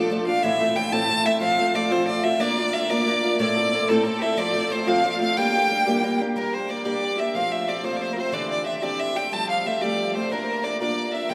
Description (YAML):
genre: celtic folk, Celtic jig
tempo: 122 BPM (dotted quarters)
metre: 6/8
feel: straight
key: unclear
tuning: A4 = 444 Hz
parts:
  - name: rich violin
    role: melody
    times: 0.0-11.3 s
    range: A4 to A5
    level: -26 LUFS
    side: equal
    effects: none
  - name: picked steel-string acoustic guitar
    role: accompaniment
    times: 0.0-11.3 s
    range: A2 to Bb4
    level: -27 LUFS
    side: equal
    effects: none
  - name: bright fiddle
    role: second line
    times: 2.4-11.3 s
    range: G4 to A5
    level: -32 LUFS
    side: equal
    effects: none
room: wet cathedral reverb, RT60 6.5 s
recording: recorded in a church or concert hall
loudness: -23 LUFS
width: mono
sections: 0.0-6.4 A section; 6.4-11.3 B section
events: none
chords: 0.4 Am; 1.4 F; 2.4 Bb; 3.4 Am; 4.4 F; 5.4 Gm; 7.4 F; 8.3 Cadd9; 9.3 Fadd9; 10.3 Bb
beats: | 0.44 0.93 | 1.43 1.92 | 2.41 2.91 | 3.40 3.90 | 4.39 4.88 | 5.38 5.87 | 6.37 6.86 | 7.35 7.85 | 8.34 8.83 | 9.33 9.82 | 10.31 10.81 | 11.30